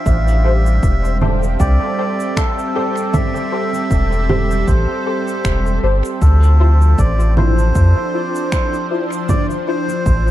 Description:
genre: ambient dub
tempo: 78 BPM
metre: 4/4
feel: swing 56% on 16ths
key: D minor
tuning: A4 = 441 Hz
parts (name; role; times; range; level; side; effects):
- melodica; melody; 0.0-10.3 s; A4 to E5; -23 LUFS; right 1 dB; dub echo
- warm analog pad; sustained chords; 0.0-10.3 s; F3 to G5; -23 LUFS; equal; chorus
- felt-muted upright piano; arpeggios; 0.0-6.3 s; G4 to G5; -29 LUFS; right 4 dB; dub echo
- soft dub sub bass; bass; 0.1-10.3 s; E1 to F2; -13 LUFS; equal; none
- electronic kick drum; drums; 0.1-10.2 s; none; -18 LUFS; equal; none
- electronic shaker, congas and finger snaps; drums; 0.1-10.3 s; none; -24 LUFS; right 2 dB; overdrive, dub echo
- filtered dub chord stab; stabs; 0.4-9.8 s; E4 to C5; -25 LUFS; left 3 dB; ensemble chorus, dub echo
room: little or no reverb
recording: dark, warm production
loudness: -13 LUFS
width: side -13 dB against mid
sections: 0.0-10.3 A section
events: none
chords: 0.1 Am7; 6.2 Dm9

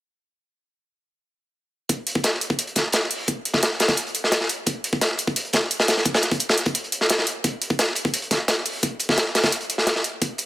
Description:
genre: drum and bass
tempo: 173 BPM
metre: 4/4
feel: straight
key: none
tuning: none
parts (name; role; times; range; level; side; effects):
- crunchy breakbeat drum kit; drums; 1.9-10.5 s; hi-hat, snare drum; -21 LUFS; equal; high-pass filter on hats, high-pass filter on snare, high-pass filter on room
- electronic hi-hat; drums; 1.9-10.5 s; none; -24 LUFS; right 1 dB; overdrive
- electronic kick drum; drums; 1.9-10.3 s; none; -24 LUFS; equal; overdrive, high-pass filter on kick, high-pass filter on room
room: little or no reverb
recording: none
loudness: -20 LUFS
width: side -15 dB against mid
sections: 1.9-10.5 A section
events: none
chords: none

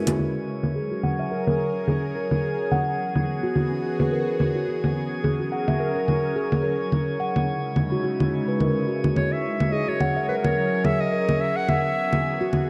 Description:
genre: organic downtempo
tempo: 107 BPM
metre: 4/4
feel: swing 57% on 16ths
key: F# mixolydian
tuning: A4 = 441 Hz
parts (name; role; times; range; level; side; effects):
- bowed-like drone; sustained chords; 0.0-12.7 s; C#3 to A#4; -32 LUFS; equal; built-in reverb, phaser
- steel tongue drum; arpeggios; 0.0-12.7 s; C#4 to F#5; -29 LUFS; equal; low-pass filter, tape echo
- drifting glass-harmonics texture; texture; 0.0-12.7 s; C#4 to C#5; -38 LUFS; equal; chorus, built-in reverb
- electronic hi-hat, congas and cabasa; drums; 0.1-12.7 s; none; -27 LUFS; equal; overdrive, low-pass filter on hats, low-pass filter on perc, low-pass filter on snare
- clear clarinet; melody; 9.2-12.7 s; B4 to F#5; -28 LUFS; equal; tape echo
room: moderate recital hall reverb, RT60 1.6 s, digital ambience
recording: none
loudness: -24 LUFS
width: mono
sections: 0.2-12.7 A section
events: filter sweep on drum 0.2-12.7; filter sweep on steel tongue drum 0.2-12.7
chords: 0.2 F#add9; 2.4 Eadd9; 4.7 F#add9; 6.9 C#m; 9.2 F#add9; 11.4 Eadd9

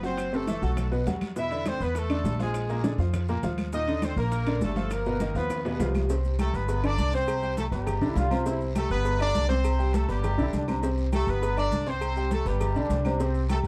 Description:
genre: latin, salsa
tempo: 203 BPM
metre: 4/4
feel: straight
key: unclear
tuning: A4 = 440 Hz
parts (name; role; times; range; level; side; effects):
- bright horn section; melody; 0.0-13.6 s; G3 to E5; -33 LUFS; equal; none
- bright upright piano; accompaniment; 0.0-13.7 s; Bb2 to C6; -34 LUFS; equal; none
- upright bass; bass; 0.0-13.7 s; F#1 to F2; -30 LUFS; equal; none
- guiro; percussion; 0.0-13.7 s; none; -54 LUFS; equal; none
- maracas; percussion; 0.0-13.7 s; none; -55 LUFS; equal; none
- timbales and agogo bells; percussion; 0.0-13.6 s; none; -40 LUFS; equal; none
- bongos and cowbell; percussion; 0.2-13.6 s; none; -40 LUFS; equal; none
- claves; percussion; 0.2-13.6 s; none; -50 LUFS; equal; none
- congas; percussion; 0.2-13.6 s; none; -37 LUFS; equal; none
- mellow trombone section; second line; 8.0-13.4 s; C4 to F4; -35 LUFS; equal; none
room: light reverb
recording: dark, warm production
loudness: -27 LUFS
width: mono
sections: 0.0-6.1 A section; 6.1-13.7 B section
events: drum fill 5.5-6.1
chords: 0.2 F#m7b5; 0.8 B5; 1.4 E5; 2.5 Bb7; 3.7 Ebmaj9; 4.9 G7alt; 6.1 C5; 6.7 G; 7.3 C5; 7.9 G7; 8.5 C5; 9.1 G; 9.6 C5; 10.2 G; 10.8 C5; 11.4 G; 12.0 C5; 12.6 G

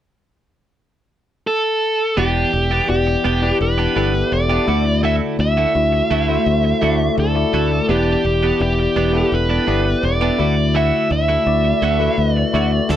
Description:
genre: 1980s-style pop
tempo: 84 BPM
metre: 4/4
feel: straight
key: E minor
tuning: A4 = 440 Hz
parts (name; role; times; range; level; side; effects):
- bluesy overdriven lead guitar; melody; 1.5-13.0 s; G4 to E5; -19 LUFS; right 1 dB; distortion
- tine electric piano; accompaniment; 2.2-13.0 s; D3 to E5; -20 LUFS; left 5 dB; lush chorus
- twelve-string electric guitar; riff; 2.2-12.9 s; A3 to G4; -24 LUFS; right 5 dB; lush chorus
- modern bright fingered electric bass; bass; 2.2-13.0 s; E1 to D2; -20 LUFS; right 1 dB; none
- snare drum; drums; 12.9-13.0 s; none; -23 LUFS; right 2 dB; none
room: light reverb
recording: dry, close 1970s-style studio recording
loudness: -15 LUFS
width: side -11 dB against mid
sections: 0.0-2.2 A section; 2.2-13.0 B section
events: none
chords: 0.0 N.C.; 2.2 Em7; 4.7 Dadd9; 7.9 Em7; 10.4 Dadd9

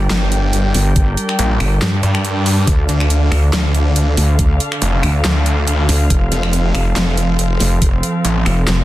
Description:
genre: heavy wobble dubstep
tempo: 140 BPM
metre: 4/4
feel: swing 54% on 16ths, half-time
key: D minor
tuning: A4 = 436 Hz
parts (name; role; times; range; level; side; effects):
- warm chamber string section; sustained chords; 0.0-8.8 s; D3 to G5; -21 LUFS; equal; sidechain pumping, low-pass filter
- wobble bass; bass; 0.0-8.8 s; F1 to G2; -14 LUFS; equal; chorus, overdrive
- snarling distorted saw bass; bass; 0.1-8.4 s; F1 to G2; -15 LUFS; equal; distortion, overdrive
- dubstep drum kit; drums; 0.1-8.8 s; finger snaps, handclaps, hi-hat, snare drum; -21 LUFS; equal; overdrive
- electronic kick drum; drums; 1.0-7.9 s; none; -15 LUFS; equal; overdrive
room: little or no reverb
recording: dense, heavily limited modern master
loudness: -13 LUFS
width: side -15 dB against mid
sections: 0.0-8.8 A section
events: none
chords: 0.0 Gm; 2.7 Dm; 6.1 F

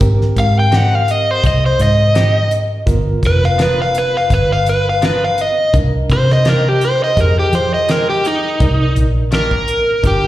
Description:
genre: straight-eighth soul blues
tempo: 84 BPM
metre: 4/4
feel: swing 54% on 16ths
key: C minor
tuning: A4 = 441 Hz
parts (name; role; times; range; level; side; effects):
- reed electric piano; accompaniment; 0.0-10.3 s; B3 to D5; -26 LUFS; right 3 dB; fast tremolo, slapback echo
- vintage muted fingered electric bass; bass; 0.0-10.3 s; F1 to F3; -15 LUFS; equal; none
- damped 70s drum kit; drums; 0.0-10.2 s; hi-hat, kick drum, snare drum; -18 LUFS; equal; none
- overdriven electric guitar; melody; 0.4-10.3 s; Eb4 to G5; -15 LUFS; equal; slapback echo
- clean electric guitar; stabs; 0.7-9.6 s; Eb3 to A#4; -25 LUFS; left 4 dB; slapback echo
room: light reverb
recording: live gig heard through the venue's PA, recital hall reverb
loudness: -12 LUFS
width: side -14 dB against mid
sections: 0.0-10.3 A section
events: overdriven electric guitar solo 0.0-10.3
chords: 0.0 Abmaj7; 2.9 G7#9; 5.7 Cm9; 7.2 Fm9; 8.6 Cm9

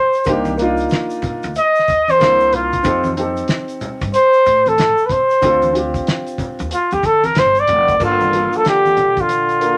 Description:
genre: hip hop, jazz-hop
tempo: 93 BPM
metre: 4/4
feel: swing 63% on 16ths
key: G minor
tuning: A4 = 443 Hz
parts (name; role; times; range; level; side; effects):
- breathy flugelhorn; melody; 0.0-9.8 s; F4 to Eb5; -15 LUFS; equal; none
- cloth-damped thuddy drum kit; drums; 0.1-9.8 s; crash cymbal, hi-hat, kick drum, snare drum; -25 LUFS; equal; none
- egg shaker and congas; percussion; 0.1-9.8 s; none; -34 LUFS; equal; none
- dark upright piano; accompaniment; 0.3-9.8 s; Bb3 to Bb4; -23 LUFS; equal; none
- upright bass; bass; 0.3-9.8 s; F1 to D3; -29 LUFS; equal; none
- dark trombone; second line; 8.0-9.8 s; D3 to F3; -28 LUFS; equal; none
room: light reverb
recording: none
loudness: -16 LUFS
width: mono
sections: 0.0-8.0 A section; 8.0-9.8 B section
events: flugelhorn solo 0.0-8.0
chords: 0.3 Cm9; 2.2 C13; 2.8 F7; 5.4 Dm7; 8.0 Gm7

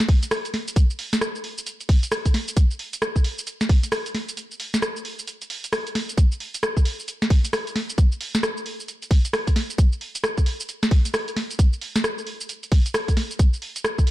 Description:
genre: UK garage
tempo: 133 BPM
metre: 4/4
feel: swing 62% on 16ths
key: none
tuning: none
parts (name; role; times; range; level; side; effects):
- punchy analog drum machine; drums; 0.0-14.1 s; hi-hat, rim click, shaker, snare drum; -25 LUFS; equal; none
- electronic kick drum; drums; 0.1-14.1 s; none; -17 LUFS; equal; none
room: little or no reverb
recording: dark, warm production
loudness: -20 LUFS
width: side -16 dB against mid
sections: 0.0-14.1 A section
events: break 4.4-6.2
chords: none

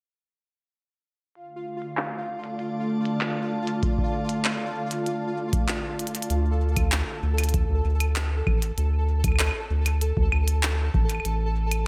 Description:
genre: IDM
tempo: 97 BPM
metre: 4/4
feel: straight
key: D minor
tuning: A4 = 440 Hz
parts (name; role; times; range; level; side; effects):
- glassy FM pad; sustained chords; 1.7-6.3 s; D3 to A5; -32 LUFS; equal; ensemble chorus, built-in reverb
- glitchy drum kit; drums; 1.4-11.8 s; claves, handclaps, hi-hat; -32 LUFS; equal; low-pass filter on hats, low-pass filter on snare, low-pass filter on perc, low-pass filter on room, digital delay
- pulsing gated texture; texture; 1.4-11.9 s; F4 to A5; -36 LUFS; equal; chorus, built-in reverb
- electronic kick drum; drums; 3.8-11.1 s; none; -28 LUFS; equal; none
- round analog bass; bass; 6.3-11.9 s; A1 to D2; -26 LUFS; equal; none
room: light reverb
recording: none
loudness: -25 LUFS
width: mono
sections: 1.4-6.3 A section; 6.3-11.9 B section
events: filter sweep on drum 1.4-6.3; break 5.7-6.3; drum fill 6.0-6.3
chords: 1.4 Dm; 6.3 D5; 11.3 A5

